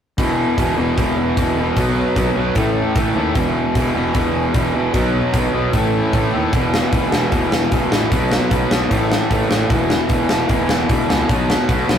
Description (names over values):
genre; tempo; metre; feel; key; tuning
punk rock; 151 BPM; 4/4; straight; unclear; A4 = 440 Hz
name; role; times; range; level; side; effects
distorted electric guitar; riff; 0.2-12.0 s; E2 to B3; -21 LUFS; left 3 dB; distortion
distorted electric guitar; riff; 0.2-12.0 s; E2 to B3; -20 LUFS; right 3 dB; distortion
fuzz picked electric bass; bass; 0.2-12.0 s; E1 to D#2; -24 LUFS; equal; overdrive
big rock drum kit; drums; 0.2-12.0 s; hi-hat, kick drum, snare drum; -20 LUFS; equal; none
room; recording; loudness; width
light reverb; rough rehearsal-room recording, warm saturation; -15 LUFS; side -8 dB against mid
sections
0.2-12.0 A section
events
none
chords
0.2 E5; 1.8 B5; 2.6 A5; 3.4 E5; 4.9 B5; 5.7 A5; 6.5 E5; 8.1 B5; 8.9 A5; 9.7 E5; 11.3 B5